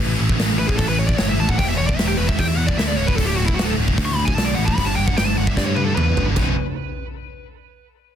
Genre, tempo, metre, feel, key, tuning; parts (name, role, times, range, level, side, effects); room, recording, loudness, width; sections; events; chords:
heavy metal; 150 BPM; 4/4; straight; B minor; A4 = 438 Hz
scooped high-gain guitar; riff; 0.0-6.5 s; B1 to E3; -24 LUFS; equal; distortion
modern bright picked electric bass; bass; 0.0-6.6 s; B0 to G2; -22 LUFS; equal
big rock drum kit; drums; 0.3-6.5 s; crash cymbal, hi-hat, kick drum, snare drum, toms; -21 LUFS; equal
high-gain lead guitar; melody; 0.6-6.2 s; E4 to C#6; -25 LUFS; left 1 dB; distortion, ping-pong delay
little or no reverb; dense, heavily limited modern master; -17 LUFS; side -9 dB against mid
0.0-6.4 A section; 6.4-8.0 B section
lead electric guitar solo 0.0-6.4; drum fill 5.6-6.4
0.0 A5; 1.6 E5; 3.2 D5; 4.8 G5; 6.4 B5